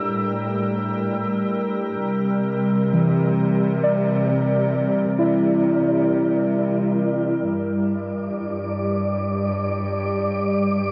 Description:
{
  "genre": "ambient",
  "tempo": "66 BPM",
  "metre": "3/4",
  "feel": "straight",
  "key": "G dorian",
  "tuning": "A4 = 444 Hz",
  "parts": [
    { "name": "muted felt-like synth keys", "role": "arpeggios", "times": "0.0-8.0 s", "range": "E3 to E6", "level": "-26 LUFS", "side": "equal", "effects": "chorus, delay, shimmer reverb" },
    { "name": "rich chamber cello section", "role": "bass", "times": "0.0-10.9 s", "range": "G2 to C3", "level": "-28 LUFS", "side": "equal", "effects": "none" },
    { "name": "organ-like drone", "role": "drone", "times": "0.0-10.9 s", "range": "G3 to Bb4", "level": "-26 LUFS", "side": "equal", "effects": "ensemble chorus, built-in reverb" },
    { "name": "wind-like tuned noise texture", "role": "texture", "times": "8.0-10.9 s", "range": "D5 to D6", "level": "-30 LUFS", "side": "equal", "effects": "built-in reverb, shimmer reverb" }
  ],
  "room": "wet huge ambient reverb, RT60 8.5 s",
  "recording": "worn, warbling old tape, cassette tape, warbly pitch drift",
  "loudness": "-22 LUFS",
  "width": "mono",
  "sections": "0.0-7.5 A section; 7.5-10.9 B section",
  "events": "none",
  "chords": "0.0 A5; 2.0 Cadd9; 7.5 G5",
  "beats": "0.24 1.13 | 2.03 2.93 3.83 | 4.74 5.64 6.56 | 7.48 8.38 9.29 | 10.20"
}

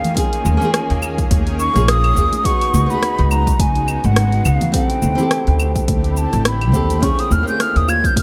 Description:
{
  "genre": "sunset chillout",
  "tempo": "105 BPM",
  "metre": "4/4",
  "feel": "swing 56% on 16ths",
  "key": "unclear",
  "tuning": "A4 = 439 Hz",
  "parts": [
    { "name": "mellow hollow silver concert flute", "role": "melody", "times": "0.0-8.2 s", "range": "F5 to Ab6", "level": "-23 LUFS", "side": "equal", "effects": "analog delay" },
    { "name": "flamenco guitar", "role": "accompaniment", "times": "0.0-8.2 s", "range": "Bb3 to A4", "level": "-26 LUFS", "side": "equal", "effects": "analog delay" },
    { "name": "shimmering ambient pad", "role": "sustained chords", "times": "0.0-8.2 s", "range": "Db3 to Ab4", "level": "-30 LUFS", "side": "equal", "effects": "chorus, built-in reverb" },
    { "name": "deep house drum kit", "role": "drums", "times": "0.0-8.2 s", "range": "claves, hi-hat, rim click, shaker", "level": "-26 LUFS", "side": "equal", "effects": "none" },
    { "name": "congas", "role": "percussion", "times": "0.0-8.2 s", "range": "none", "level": "-28 LUFS", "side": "equal", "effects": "tape echo" },
    { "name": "electronic kick drum", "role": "drums", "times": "0.2-8.2 s", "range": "none", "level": "-22 LUFS", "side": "equal", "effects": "none" },
    { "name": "upright bass", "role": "bass", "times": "0.5-8.2 s", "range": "Ab1 to Eb2", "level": "-19 LUFS", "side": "equal", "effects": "none" },
    { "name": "steel pan", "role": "arpeggios", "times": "7.0-8.1 s", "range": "Db4 to F4", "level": "-30 LUFS", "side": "equal", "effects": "analog delay" }
  ],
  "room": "light reverb, studio reverb",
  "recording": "echo-heavy mix",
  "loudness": "-16 LUFS",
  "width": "mono",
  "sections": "0.0-8.2 A section",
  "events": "none",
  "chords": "0.0 Eb9sus4; 2.5 Db9sus4; 4.7 D9sus4; 7.0 Eb9sus4",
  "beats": "| 0.17 0.74 1.31 1.88 | 2.45 3.03 3.60 4.17 | 4.74 5.31 5.88 6.45 | 7.03 7.60 8.17"
}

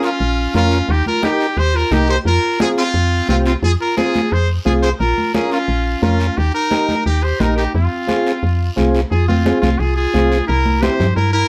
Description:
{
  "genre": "latin, cumbia",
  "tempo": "175 BPM",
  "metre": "4/4",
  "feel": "straight",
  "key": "F minor",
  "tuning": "A4 = 440 Hz",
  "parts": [
    { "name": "brilliant trumpet", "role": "melody", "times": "0.0-11.5 s", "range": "F4 to C5", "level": "-22 LUFS", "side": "equal", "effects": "plate reverb" },
    { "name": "warm clarinet", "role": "second line", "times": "0.0-11.5 s", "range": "C4 to Ab4", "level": "-26 LUFS", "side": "equal", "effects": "none" },
    { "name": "overdriven combo organ", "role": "accompaniment", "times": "0.0-11.1 s", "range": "C4 to Bb4", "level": "-22 LUFS", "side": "equal", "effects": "none" },
    { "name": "guiro", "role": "percussion", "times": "0.0-11.5 s", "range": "none", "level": "-36 LUFS", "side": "equal", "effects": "none" },
    { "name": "woody FM bass", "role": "bass", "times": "0.2-11.4 s", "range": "Bb1 to G2", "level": "-19 LUFS", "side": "equal", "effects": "none" },
    { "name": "congas", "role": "percussion", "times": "0.2-11.3 s", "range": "none", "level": "-24 LUFS", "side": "equal", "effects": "none" }
  ],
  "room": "light reverb",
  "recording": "dark, warm production",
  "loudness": "-16 LUFS",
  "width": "mono",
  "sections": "0.0-9.1 A section; 9.1-11.5 B section",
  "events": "none",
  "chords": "0.0 Bbm; 0.9 Eb; 2.3 Fm; 5.0 Bbm; 6.4 Eb; 7.7 Fm; 10.5 C7",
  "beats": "0.20 0.54 | 0.89 1.23 1.57 1.92 | 2.26 2.60 2.94 3.29 | 3.63 3.97 4.32 4.66 | 5.00 5.34 5.69 6.03 | 6.37 6.72 7.06 7.40 | 7.75 8.09 8.43 8.77 | 9.12 9.46 9.80 10.14 | 10.48 10.83 11.17"
}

